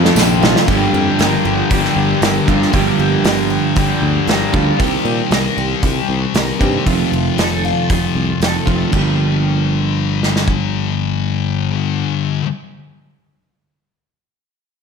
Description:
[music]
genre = rock, shoegaze and dream pop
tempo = 116 BPM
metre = 4/4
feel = straight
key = G minor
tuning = A4 = 440 Hz
[part]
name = warbly tape-like pad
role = sustained chords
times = 0.0-0.7 s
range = A4 to C6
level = -31 LUFS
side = equal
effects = none
[part]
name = picked twelve-string acoustic guitar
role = arpeggios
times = 0.0-9.7 s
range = F4 to Bb4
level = -23 LUFS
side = left 1 dB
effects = analog chorus, tape echo
[part]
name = overdriven electric guitar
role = riff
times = 0.0-4.8 s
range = F2 to G3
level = -20 LUFS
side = equal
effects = none
[part]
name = semi-hollow electric guitar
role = riff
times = 0.0-12.4 s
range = F2 to G4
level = -20 LUFS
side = right 8 dB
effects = reverse reverb
[part]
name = thick fuzz guitar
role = riff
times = 0.0-12.5 s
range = F2 to C4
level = -19 LUFS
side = left 10 dB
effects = distortion, lush chorus
[part]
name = sustaining fretless electric bass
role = bass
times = 0.0-12.0 s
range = F1 to Bb2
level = -21 LUFS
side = right 1 dB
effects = none
[part]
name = loose indie drum kit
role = drums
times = 0.0-10.6 s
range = crash cymbal, hi-hat, kick drum, snare drum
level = -18 LUFS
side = right 1 dB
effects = none
[sound]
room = moderate recital hall reverb, RT60 1.4 s, studio reverb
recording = none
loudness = -13 LUFS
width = side -6 dB against mid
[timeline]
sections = 0.7-8.9 A section; 8.9-13.1 B section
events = drum fill 0.0-0.7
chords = 0.0 F7; 0.7 Gm7; 4.8 Cm7; 6.9 F7; 8.9 Gm7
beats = 0.17 | 0.68 1.19 1.71 2.22 | 2.73 3.25 3.76 4.28 | 4.79 5.31 5.83 6.34 | 6.86 7.37 7.89 8.41 | 8.92 9.44 9.96 10.47 | 10.99 11.51 12.02

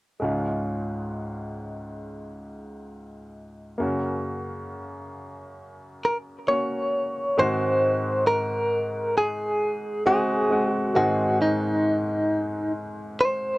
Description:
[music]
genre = pop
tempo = 67 BPM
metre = 4/4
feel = straight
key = unclear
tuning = A4 = 444 Hz
[part]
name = clear baby grand piano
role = accompaniment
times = 0.2-13.6 s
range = Db2 to Ab4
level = -28 LUFS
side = equal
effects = cassette tape
[part]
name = direct-recorded clean electric guitar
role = melody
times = 6.0-13.6 s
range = Eb4 to Db5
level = -23 LUFS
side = equal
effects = tremolo, cassette tape
[sound]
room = moderate booth ambience, RT60 0.3 s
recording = home recording on cassette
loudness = -22 LUFS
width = side -20 dB against mid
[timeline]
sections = 0.2-7.4 A section; 7.4-13.6 B section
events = none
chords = 0.2 Db; 3.8 Gb; 7.4 Ab7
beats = | 0.22 1.11 2.01 2.90 | 3.80 4.69 5.59 6.49 | 7.38 8.28 9.17 10.07 | 10.96 11.86 12.75

